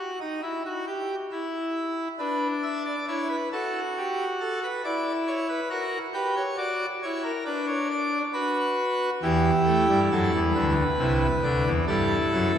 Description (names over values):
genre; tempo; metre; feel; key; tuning
classical, baroque-style 3-part fugue for pipe organ; 68 BPM; 4/4; straight; E minor; A4 = 439 Hz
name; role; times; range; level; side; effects
pipe organ, full organ; solo; 0.0-12.6 s; C2 to E5; -23 LUFS; equal; none
room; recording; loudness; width
wet church reverb, RT60 3.6 s; heard from further back in the room; -24 LUFS; side -9 dB against mid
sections
0.0-12.6 A section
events
none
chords
0.0 N.C.; 2.2 Bm/D; 4.0 Em; 5.7 F#; 7.5 Bm/D; 9.2 Em; 11.0 Am/C